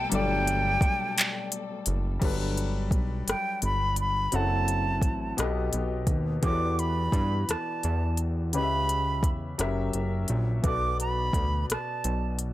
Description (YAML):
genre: slow six-eight R&B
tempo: 57 BPM (dotted quarters)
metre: 6/8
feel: straight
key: G major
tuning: A4 = 440 Hz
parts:
  - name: silver concert flute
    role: melody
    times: 0.0-12.4 s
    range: G5 to D6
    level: -29 LUFS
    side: right 2 dB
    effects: plate reverb
  - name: clear concert grand piano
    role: accompaniment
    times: 0.0-12.5 s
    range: B2 to F#5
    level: -32 LUFS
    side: left 4 dB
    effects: plate reverb
  - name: warm studio string section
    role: sustained chords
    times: 0.0-2.2 s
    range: B2 to A4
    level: -38 LUFS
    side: left 1 dB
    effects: plate reverb
  - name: fat analog bass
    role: bass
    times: 0.0-12.5 s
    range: F#1 to G2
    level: -28 LUFS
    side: equal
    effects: none
  - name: smooth R&B drum kit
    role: drums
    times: 0.1-12.5 s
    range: crash cymbal, handclaps, hi-hat, kick drum, rim click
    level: -27 LUFS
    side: equal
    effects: overdrive
room: little or no reverb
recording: none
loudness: -25 LUFS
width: side -15 dB against mid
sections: 0.0-2.2 A section; 2.2-12.5 B section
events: none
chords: 0.0 Gmaj9; 4.3 F#m7b5; 5.4 B7b13; 6.4 Em11; 8.5 C#m7b5; 9.6 F#7b9; 10.6 Bm7